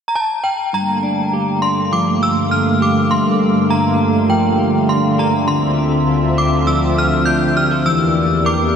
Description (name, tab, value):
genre	dream pop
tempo	101 BPM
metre	4/4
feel	straight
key	G dorian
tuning	A4 = 438 Hz
part	synth chime	melody	0.1-8.8 s	G5 to G6	-18 LUFS	equal	ensemble chorus, ping-pong delay
part	warm analog pad	sustained chords	0.7-8.8 s	D2 to F5	-16 LUFS	right 1 dB	chorus, tremolo
part	clean electric guitar	arpeggios	0.7-8.8 s	G2 to Bb4	-20 LUFS	left 2 dB	lush chorus, ping-pong delay
room	wet huge ambient reverb, RT60 7.0 s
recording	dreamy mix soaked in reverb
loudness	-13 LUFS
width	side -7 dB against mid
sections	0.7-8.8 A section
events	none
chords	0.0 N.C.; 0.7 Gm7; 5.5 Dm7; 7.9 C7/E (rootless)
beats	0.14 | 0.73 1.33 1.92 2.52 | 3.11 3.70 4.30 4.89 | 5.49 6.08 6.67 7.27 | 7.86 8.46